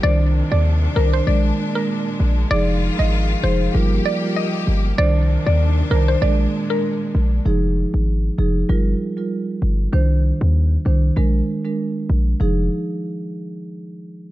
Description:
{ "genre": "dancehall", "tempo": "97 BPM", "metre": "4/4", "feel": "swing 56% on 16ths", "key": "F dorian", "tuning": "A4 = 440 Hz", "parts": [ { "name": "mallet-like synth pluck", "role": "melody", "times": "0.0-6.8 s", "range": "Bb4 to Eb5", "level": "-24 LUFS", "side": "equal", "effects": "chorus, tape echo" }, { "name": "marimba with soft mallets", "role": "accompaniment", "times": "0.0-12.6 s", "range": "Eb3 to C5", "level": "-23 LUFS", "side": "right 2 dB", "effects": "none" }, { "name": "clear symphonic string section", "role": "sustained chords", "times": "0.0-7.4 s", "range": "Bb2 to G4", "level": "-27 LUFS", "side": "left 2 dB", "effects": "none" }, { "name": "hard-hitting 808-style bass", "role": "bass", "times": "0.0-12.7 s", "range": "F1 to Eb2", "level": "-17 LUFS", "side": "equal", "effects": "none" } ], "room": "little or no reverb", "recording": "dark, warm production", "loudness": "-16 LUFS", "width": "side -15 dB against mid", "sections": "0.0-7.5 A section; 7.5-12.4 B section; 12.4-14.3 C section", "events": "none", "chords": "0.0 Cmadd9; 1.3 Bb7; 2.5 Fm7; 3.7 Gm7; 5.0 Cmadd9; 6.2 Bb7; 7.5 Fm7; 8.7 Gm7; 9.9 Cmadd9; 11.2 Bb7; 12.4 Fm7", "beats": "| 0.03 0.65 1.27 1.89 | 2.51 3.13 3.75 4.36 | 4.98 5.60 6.22 6.84 | 7.46 8.07 8.69 9.31 | 9.93 10.55 11.17 11.79 | 12.40" }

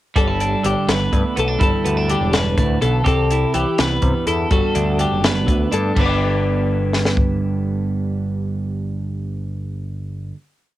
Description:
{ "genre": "math rock and midwest emo", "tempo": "83 BPM (dotted quarters)", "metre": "6/8", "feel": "straight", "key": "G major", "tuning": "A4 = 440 Hz", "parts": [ { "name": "twelve-string electric guitar", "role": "accompaniment", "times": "0.2-10.4 s", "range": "D2 to G4", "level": "-22 LUFS", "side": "right 4 dB", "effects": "cassette tape" }, { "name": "twelve-string electric guitar", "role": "arpeggios", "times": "0.2-10.4 s", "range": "G4 to G5", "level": "-23 LUFS", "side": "left 6 dB", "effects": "cassette tape" }, { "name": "growling picked electric bass", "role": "bass", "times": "0.2-10.3 s", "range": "E1 to C3", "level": "-22 LUFS", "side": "equal", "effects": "overdrive" }, { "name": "compact cocktail drum kit", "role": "drums", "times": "0.2-7.3 s", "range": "crash cymbal, hi-hat, kick drum, snare drum", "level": "-20 LUFS", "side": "left 1 dB", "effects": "none" } ], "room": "little or no reverb", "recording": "home recording on cassette", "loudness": "-16 LUFS", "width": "side -14 dB against mid", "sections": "0.2-6.0 A section; 6.0-8.8 final chord", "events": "none", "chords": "0.2 G6; 3.1 Cmaj7; 4.5 Gmaj7; 6.0 G", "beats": "| 0.16 0.89 | 1.61 2.33 | 3.06 3.78 | 4.51 5.23 | 5.95 6.68 | 7.40 8.12" }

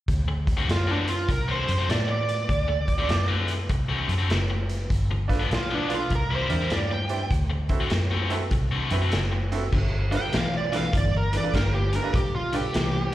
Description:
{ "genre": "electric blues shuffle", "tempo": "100 BPM", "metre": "4/4", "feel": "swing 65% on 8ths", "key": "unclear", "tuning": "A4 = 440 Hz", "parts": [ { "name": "vintage muted fingered electric bass", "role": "bass", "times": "0.1-13.1 s", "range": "F#1 to A2", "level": "-26 LUFS", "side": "equal", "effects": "none" }, { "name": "raw garage drum kit", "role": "drums", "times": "0.1-12.9 s", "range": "crash cymbal, hi-hat, kick drum, snare drum", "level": "-28 LUFS", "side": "equal", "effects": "none" }, { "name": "overdriven electric guitar", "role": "riff", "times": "0.3-13.1 s", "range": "G2 to F#4", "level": "-30 LUFS", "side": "left 4 dB", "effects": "spring reverb, slapback echo" }, { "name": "smooth overdriven lead guitar", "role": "melody", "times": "0.7-13.1 s", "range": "D4 to G5", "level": "-29 LUFS", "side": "right 2 dB", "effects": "slapback echo" }, { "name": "bright upright piano", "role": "accompaniment", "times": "5.3-12.6 s", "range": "C4 to C5", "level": "-33 LUFS", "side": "right 6 dB", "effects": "slapback echo" } ], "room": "studio ambience", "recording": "live gig heard through the venue's PA, club reverb", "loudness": "-22 LUFS", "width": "side -14 dB against mid", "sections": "0.1-9.7 A section; 9.7-13.1 B section", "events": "none", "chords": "0.1 D7; 4.9 G7; 6.1 C7; 7.3 D7; 9.7 G9", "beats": "| 0.08 0.69 1.29 1.89 | 2.50 3.10 3.70 4.30 | 4.91 5.51 6.11 6.72 | 7.32 7.92 8.52 9.13 | 9.73 10.33 10.94 11.54 | 12.14 12.74" }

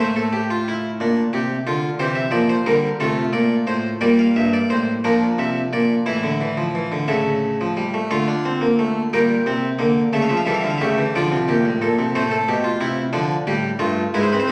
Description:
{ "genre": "classical, baroque-style 4-part fugue for harpsichord", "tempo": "60 BPM (dotted quarters)", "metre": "6/8", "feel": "straight", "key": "F major, D minor from 4.0 s", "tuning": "A4 = 440 Hz", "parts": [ { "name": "harpsichord", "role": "solo", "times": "0.0-14.5 s", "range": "G2 to G5", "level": "-20 LUFS", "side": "equal", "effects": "none" } ], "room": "wet recital hall reverb, RT60 1.4 s", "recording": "vinyl crackle", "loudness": "-20 LUFS", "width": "mono", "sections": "0.0-8.1 A section; 8.1-14.5 B section", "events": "none", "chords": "0.0 Am; 1.0 Gm/Bb; 2.0 C7; 3.0 F; 4.0 Bb; 6.0 Asus4; 7.1 A; 8.1 Dm; 9.1 Gm/Bb; 10.1 A7/C#; 11.2 Dm; 12.2 Am; 13.2 Dm", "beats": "1.00 | 2.00 3.00 | 4.00 5.02 | 6.04 7.08 | 8.12 9.14 | 10.14 11.15 | 12.15 13.15 | 14.16" }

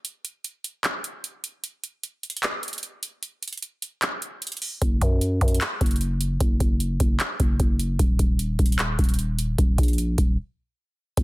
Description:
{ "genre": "hip hop, trap", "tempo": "151 BPM", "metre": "4/4", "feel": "half-time", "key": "Eb minor", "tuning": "A4 = 439 Hz", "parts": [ { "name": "booming analog drum machine", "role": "drums", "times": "0.0-11.2 s", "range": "handclaps, hi-hat, kick drum", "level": "-22 LUFS", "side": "equal", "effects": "none" }, { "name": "growling 808-style bass", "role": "bass", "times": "4.8-11.2 s", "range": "Eb1 to Gb2", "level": "-24 LUFS", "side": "equal", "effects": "none" } ], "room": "little or no reverb", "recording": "dense, heavily limited modern master", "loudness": "-22 LUFS", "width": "side -20 dB against mid", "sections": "0.0-11.2 A section", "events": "break 0.0-4.8, 10.4-11.2", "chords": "none", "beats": "| 0.05 0.45 0.84 1.24 | 1.64 2.03 2.43 2.83 | 3.23 3.62 4.02 4.42 | 4.82 5.21 5.61 6.01 | 6.41 6.80 7.20 7.60 | 7.99 8.39 8.79 9.19 | 9.58 9.98 10.38 10.78 | 11.17" }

